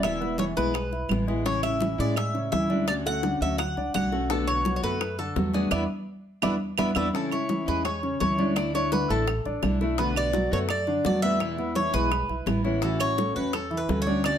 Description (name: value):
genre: latin, Cuban son and guajira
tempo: 169 BPM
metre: 4/4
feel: straight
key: A major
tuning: A4 = 439 Hz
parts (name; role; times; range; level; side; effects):
- Cuban tres; melody; 0.0-14.4 s; G#4 to F#5; -28 LUFS; right 1 dB; plate reverb
- fingerpicked steel-string acoustic guitar; accompaniment; 0.0-14.4 s; B2 to F#4; -31 LUFS; left 3 dB; none
- warm grand piano; arpeggios; 0.0-14.4 s; C#3 to E5; -32 LUFS; left 1 dB; none
- upright bass; bass; 0.0-14.4 s; E1 to A2; -31 LUFS; right 1 dB; none
- bongos; percussion; 0.0-14.4 s; none; -35 LUFS; left 7 dB; none
- claves; percussion; 0.0-14.4 s; none; -34 LUFS; right 9 dB; none
- congas; percussion; 0.0-14.4 s; none; -30 LUFS; right 2 dB; none
room: wet studio reverb, RT60 0.8 s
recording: none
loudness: -23 LUFS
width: side -9 dB against mid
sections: 0.0-7.1 A section; 7.1-14.4 A section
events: band accent 5.7-7.1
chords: 0.0 E; 1.5 Amaj7; 2.9 Dmaj7; 4.3 Bm7; 5.7 E5; 7.1 Amaj7; 8.6 Dsus2; 10.0 Bm7; 11.4 E; 12.8 A6